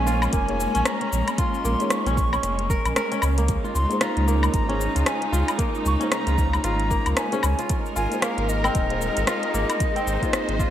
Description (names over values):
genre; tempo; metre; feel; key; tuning
organic downtempo; 114 BPM; 4/4; swing 59% on 16ths; unclear; A4 = 440 Hz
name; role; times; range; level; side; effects
breathy bright ney; melody; 0.0-10.7 s; Eb5 to Db6; -28 LUFS; left 1 dB; digital delay
felt-muted upright piano; accompaniment; 0.0-10.7 s; Bb3 to Db5; -32 LUFS; left 2 dB; sidechain pumping, digital delay
rich symphonic string section; sustained chords; 0.0-10.7 s; Db3 to C5; -29 LUFS; right 1 dB; sidechain pumping
kora; arpeggios; 0.0-10.7 s; Bb3 to Bb4; -29 LUFS; equal; vintage 12-bit sampler grit, digital delay
warm sub bass; bass; 0.0-10.7 s; Eb1 to Db2; -24 LUFS; equal; sidechain pumping
afro-pop drum kit; drums; 0.1-10.7 s; cabasa, hi-hat, rim click, woodblock; -27 LUFS; left 1 dB; gated reverb
electronic kick drum; drums; 0.3-10.7 s; none; -25 LUFS; equal; none
room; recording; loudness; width
moderate lush hall reverb, RT60 1.9 s, small room ambience; bright 1980s-style digital production; -20 LUFS; side -11 dB against mid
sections
0.0-10.7 A section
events
none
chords
0.0 Bbm7; 3.5 Db6; 7.7 Ab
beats
0.33 0.85 | 1.38 1.91 2.43 2.96 | 3.48 4.01 4.54 5.06 | 5.59 6.12 6.64 7.17 | 7.70 8.22 8.75 9.27 | 9.80 10.33